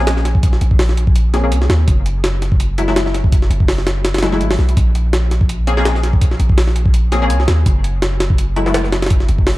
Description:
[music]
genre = drum and bass, jungle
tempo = 166 BPM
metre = 4/4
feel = swing 55% on 16ths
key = Bb minor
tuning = A4 = 440 Hz
[part]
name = filtered dub chord stab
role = stabs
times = 0.0-9.6 s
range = Gb3 to Ab4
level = -22 LUFS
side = left 2 dB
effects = ensemble chorus, dub echo
[part]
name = long sustained 808-style bass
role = bass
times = 0.0-9.6 s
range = Gb1 to Eb2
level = -16 LUFS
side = equal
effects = none
[part]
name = jungle sampler-style drum kit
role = drums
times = 0.1-9.6 s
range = hi-hat, kick drum, snare drum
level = -15 LUFS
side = equal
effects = none
[sound]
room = digital ambience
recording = dark, warm production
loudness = -12 LUFS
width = side -18 dB against mid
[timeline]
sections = 0.0-9.6 A section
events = none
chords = 0.0 Bbm9; 1.9 Gbm9; 4.8 Bbm9; 7.7 Gbm9

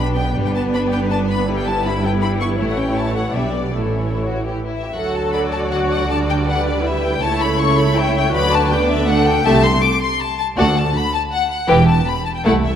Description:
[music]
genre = quick classical-period movement for string orchestra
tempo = 160 BPM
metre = 3/4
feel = rubato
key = D major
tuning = A4 = 440 Hz
[part]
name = rich chamber violin section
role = melody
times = 0.0-12.8 s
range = C#5 to D6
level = -22 LUFS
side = left 6 dB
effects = none
[part]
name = rich chamber violin section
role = second line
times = 0.0-12.6 s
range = G3 to F#5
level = -22 LUFS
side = left 2 dB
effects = none
[part]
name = rich chamber viola section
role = accompaniment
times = 0.0-12.6 s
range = E3 to A4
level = -22 LUFS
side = right 1 dB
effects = none
[part]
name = clear chamber double bass section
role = bass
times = 0.0-12.8 s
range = E1 to D2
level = -23 LUFS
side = right 2 dB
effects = none
[part]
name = dark chamber cello section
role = bass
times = 0.0-12.8 s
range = C2 to D3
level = -23 LUFS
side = right 2 dB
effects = none
[sound]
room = moderate concert hall reverb, RT60 2.3 s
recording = none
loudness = -15 LUFS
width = side -9 dB against mid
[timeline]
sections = 0.0-4.9 A section; 4.9-12.8 B section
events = none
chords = 0.4 G; 1.5 Em/G; 2.6 A; 3.4 G/B; 3.8 A; 4.9 D; 6.1 Em7/D; 7.2 A/C#; 8.3 D; 9.5 Am7/C; 10.6 D; 11.7 Em

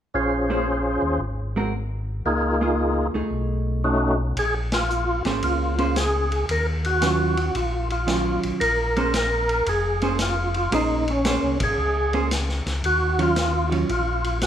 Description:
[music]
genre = soul jazz organ trio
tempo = 114 BPM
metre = 4/4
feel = swing 67% on 8ths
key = Bb minor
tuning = A4 = 440 Hz
[part]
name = percussive tonewheel organ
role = melody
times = 0.1-14.5 s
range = A3 to C5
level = -23 LUFS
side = equal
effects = slow rotary speaker, overdrive, chorus vibrato
[part]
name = mellow tonewheel organ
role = bass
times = 0.1-14.5 s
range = F1 to Eb2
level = -26 LUFS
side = left 1 dB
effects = overdrive, chorus vibrato, slow rotary speaker
[part]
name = vintage hollow-body jazz guitar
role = accompaniment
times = 0.5-13.9 s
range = Eb3 to C5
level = -27 LUFS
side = right 4 dB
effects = none
[part]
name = vintage drum kit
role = drums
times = 4.4-14.5 s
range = hi-hat, kick drum, ride cymbal, snare drum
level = -30 LUFS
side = left 1 dB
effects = none
[sound]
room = moderate recital hall reverb, RT60 1.8 s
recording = recorded in a church or concert hall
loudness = -20 LUFS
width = side -9 dB against mid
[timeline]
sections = 0.1-4.4 A section; 4.4-14.5 B section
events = band accent 4.6, 11.5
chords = 0.1 Bbm9; 1.2 Ab9; 2.3 Db6; 3.3 B13; 4.4 Bbm9; 6.5 Ebm9; 8.6 Bbm9; 12.8 Ebm9

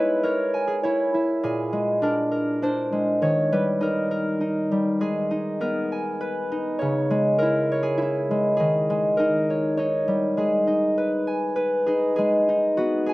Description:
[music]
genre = children's music, lullaby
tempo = 101 BPM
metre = 3/4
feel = straight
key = G# harmonic minor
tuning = A4 = 440 Hz
[part]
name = concert harp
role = solo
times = 0.0-13.1 s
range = A#2 to G#5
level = -21 LUFS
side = equal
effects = none
[sound]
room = little or no reverb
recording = recorded outdoors, with no room sound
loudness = -21 LUFS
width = side -19 dB against mid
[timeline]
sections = 0.0-12.2 A section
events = none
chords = 0.0 C#m/G#; 1.4 A#7; 3.2 D#; 5.0 G#m; 6.8 C#m; 8.6 D#sus4; 9.2 D#7; 10.4 G#m

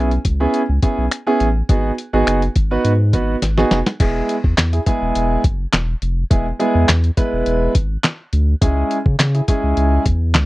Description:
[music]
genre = dance-pop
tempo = 104 BPM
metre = 4/4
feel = straight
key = unclear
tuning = A4 = 440 Hz
[part]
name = warm concert grand piano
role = accompaniment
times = 0.0-10.0 s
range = G#3 to B4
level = -18 LUFS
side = right 1 dB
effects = sidechain pumping
[part]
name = saturated sub bass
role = bass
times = 0.0-10.5 s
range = E1 to C#3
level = -18 LUFS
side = equal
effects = sidechain pumping
[part]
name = lo-fi sampler-style drum kit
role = drums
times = 0.1-10.5 s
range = crash cymbal, finger snaps, handclaps, hi-hat, kick drum, snare drum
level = -17 LUFS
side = equal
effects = none
[sound]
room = little or no reverb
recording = dry, close 1970s-style studio recording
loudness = -15 LUFS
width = side -18 dB against mid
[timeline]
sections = 0.0-4.0 A section; 4.0-10.5 B section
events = drum fill 3.4-4.0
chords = 0.0 C#m7; 1.7 G#m7; 4.0 E; 8.6 C#m

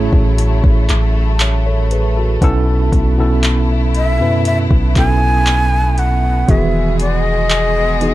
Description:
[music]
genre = contemporary R&B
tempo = 59 BPM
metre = 4/4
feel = straight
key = unclear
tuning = A4 = 443 Hz
[part]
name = breathy shakuhachi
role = melody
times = 0.0-8.1 s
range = C#5 to G#5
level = -19 LUFS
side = equal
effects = ping-pong delay
[part]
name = tine electric piano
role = accompaniment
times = 0.0-8.1 s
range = A2 to E5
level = -18 LUFS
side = right 1 dB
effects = medium stereo tremolo
[part]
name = rich studio string section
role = sustained chords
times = 0.0-8.1 s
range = F#3 to G#4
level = -24 LUFS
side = left 4 dB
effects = none
[part]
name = long sustained 808-style bass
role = bass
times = 0.0-8.1 s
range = E1 to F#2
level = -16 LUFS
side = equal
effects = none
[part]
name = smooth R&B drum kit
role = drums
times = 0.1-8.1 s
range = handclaps, hi-hat, kick drum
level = -15 LUFS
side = equal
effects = none
[sound]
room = little or no reverb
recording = dark, warm production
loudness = -12 LUFS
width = side -16 dB against mid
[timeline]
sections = 0.0-8.1 A section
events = none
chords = 0.0 F#m7/A; 2.4 B7sus4; 6.5 Emaj7

